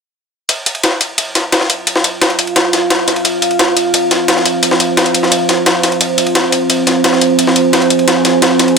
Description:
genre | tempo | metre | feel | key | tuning
dark technical drum and bass | 174 BPM | 4/4 | straight | F minor | A4 = 440 Hz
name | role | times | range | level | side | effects
deep dark ambient pad | sustained chords | 1.9-8.8 s | F4 to Ab5 | -13 LUFS | right 3 dB | chorus, built-in reverb
electronic hi-hat | drums | 0.5-8.7 s | none | -15 LUFS | left 2 dB | none
jungle sampler-style drum kit | drums | 0.5-8.8 s | ride cymbal, snare drum | -14 LUFS | left 1 dB | overdrive, high-pass filter on cymbals, high-pass filter on snare
room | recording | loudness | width
moderate plate reverb, RT60 1.8 s | none | -10 LUFS | side -5 dB against mid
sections
0.5-8.8 A section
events
filter sweep on ambient pad 0.5-8.8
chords
0.5 Fm

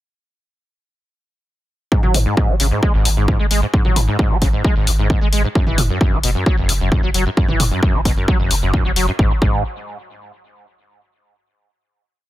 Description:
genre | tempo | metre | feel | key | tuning
driving peak-time techno | 132 BPM | 4/4 | straight | unclear | A4 = 440 Hz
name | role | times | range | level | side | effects
overdriven acid bass | riff | 1.9-9.6 s | F#1 to G#3 | -21 LUFS | equal | ensemble chorus, sidechain pumping, tape echo
electronic kick drum | drums | 1.9-9.5 s | none | -16 LUFS | equal | overdrive
saturated sub bass | bass | 2.0-9.6 s | F#1 to G#1 | -20 LUFS | equal | overdrive, sidechain pumping, low-pass filter
punchy analog drum machine | drums | 2.0-9.1 s | hi-hat, toms | -21 LUFS | left 1 dB | overdrive, sidechain pumping on toms, sidechain pumping on hats
room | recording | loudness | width
digital ambience | none | -14 LUFS | side -15 dB against mid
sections
1.9-9.2 groove; 9.2-11.0 final chord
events
none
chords
none

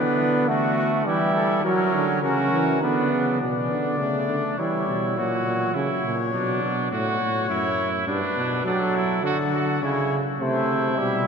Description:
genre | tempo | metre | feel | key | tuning
classical, imitative canzona for brass ensemble | 103 BPM | 3/4 | straight | unclear | A4 = 440 Hz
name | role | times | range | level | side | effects
warm trumpet | melody | 0.0-11.3 s | F#4 to E5 | -28 LUFS | left 7 dB | none
clear trumpet | second line | 0.0-11.3 s | C#4 to F#4 | -28 LUFS | right 3 dB | none
bright trombone | accompaniment | 0.0-6.9, 10.4-11.3 s | F#3 to C#4 | -26 LUFS | right 2 dB | none
clear bass trombone | bass | 0.0-11.3 s | F#2 to F#3 | -25 LUFS | right 1 dB | none
room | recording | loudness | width
wet cathedral reverb, RT60 5.2 s | none | -21 LUFS | side -6 dB against mid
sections
0.0-3.4 A section; 3.4-11.3 B section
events
none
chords
0.0 Bm/D; 1.1 Em; 1.6 F#; 2.8 Bm/D; 3.4 Bm9; 4.6 C#dim/E; 5.2 F#/A#; 6.3 Bm; 6.9 F#m/A; 8.1 G; 8.7 D/F#; 9.8 C#m; 10.4 C

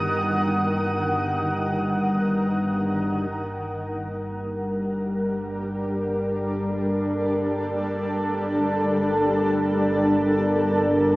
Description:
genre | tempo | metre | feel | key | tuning
dark ambient drone | free time | none | none | G harmonic minor | A4 = 442 Hz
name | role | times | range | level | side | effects
granular cloud pad | sustained chords | 0.0-11.2 s | Eb3 to Eb6 | -23 LUFS | equal | built-in reverb
gamelan-type bronze metallophone | arpeggios | 0.0-3.3 s | none | barely audible | none | none
analog drone | drone | 0.0-11.2 s | G1 to G2 | -26 LUFS | equal | chorus
room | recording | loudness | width
wet plate reverb, RT60 2.4 s | echo-heavy mix, small speaker sound | -22 LUFS | side -20 dB against mid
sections
0.0-3.3 A section; 3.3-11.2 B section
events
filter sweep on synth drone 0.0-3.3, 3.3-11.2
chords
0.0 Ebm; 3.3 Gm

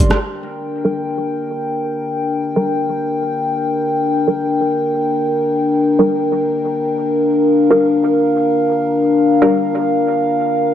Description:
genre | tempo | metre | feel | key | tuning
dubstep | free time | none | none | G minor | A4 = 441 Hz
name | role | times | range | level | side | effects
dark analog pad | sustained chords | 0.0-10.7 s | D4 to C6 | -15 LUFS | left 1 dB | chorus
filtered dub chord stab | stabs | 0.0-10.7 s | G3 to Bb4 | -18 LUFS | right 1 dB | analog chorus, dub echo
room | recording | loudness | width
moderate echo chamber reverb, RT60 1.4 s, digital ambience | dry, gritty hardware recording | -14 LUFS | side -10 dB against mid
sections
0.2-10.7 A section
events
filter sweep on synth stab 0.2-10.7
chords
0.2 Gm

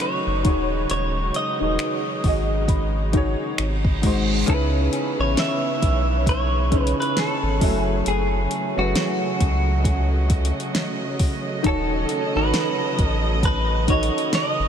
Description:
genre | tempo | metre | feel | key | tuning
contemporary R&B | 67 BPM | 4/4 | swing 58% on 16ths | C# minor | A4 = 440 Hz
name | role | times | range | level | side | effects
direct-recorded clean electric guitar | melody | 0.0-14.7 s | F#4 to E5 | -26 LUFS | equal | lush chorus, analog delay
warm baby grand piano | accompaniment | 0.0-14.7 s | G#2 to G#5 | -26 LUFS | left 1 dB | analog chorus
warm studio string section | sustained chords | 0.0-14.7 s | B#2 to D#5 | -29 LUFS | right 3 dB | none
smooth R&B drum kit | drums | 0.0-14.6 s | finger snaps, hi-hat, kick drum, snare drum | -24 LUFS | equal | none
worn celesta | texture | 0.0-14.7 s | G#5 to C#6 | -41 LUFS | right 2 dB | none
warm sub bass | bass | 0.3-14.7 s | D#1 to C#2 | -23 LUFS | equal | none
reverse cymbal | sound effects | 3.7-4.5 s | none | -34 LUFS | right 4 dB | none
room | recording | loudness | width
moderate huge ambient reverb, RT60 7.9 s | dreamy mix soaked in reverb | -19 LUFS | side -8 dB against mid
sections
0.0-4.5 A section; 4.5-14.7 B section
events
reverse cymbal 3.7-4.5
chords
0.4 G#7sus4/D#; 3.6 G#7; 4.5 C#m7; 7.6 F#m7; 11.6 D#m7b5

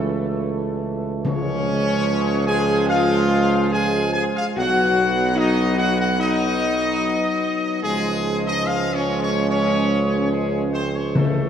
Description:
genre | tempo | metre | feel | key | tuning
classical | 73 BPM | 4/4 | straight | Db major | A4 = 444 Hz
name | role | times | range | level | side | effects
mellow trumpet section | melody | 0.0-11.5 s | Ab4 to Ab5 | -24 LUFS | left 1 dB | none
warm French horn section | sustained chords | 0.0-11.5 s | Ab3 to Ab4 | -24 LUFS | left 4 dB | none
warm trombone section | sustained chords | 0.0-11.5 s | E3 to Cb4 | -25 LUFS | right 1 dB | none
mellow tuba | bass | 0.0-11.5 s | Cb2 to Db2 | -23 LUFS | right 3 dB | none
timpani | percussion | 1.2-2.4, 11.2-11.5 s | Db3 | -23 LUFS | left 3 dB | none
room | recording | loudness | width
wet church reverb, RT60 2.9 s | none | -18 LUFS | side -8 dB against mid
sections
0.0-11.5 A section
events
none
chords
0.0 A/C#; 1.2 Db; 4.6 Cb; 7.8 Db

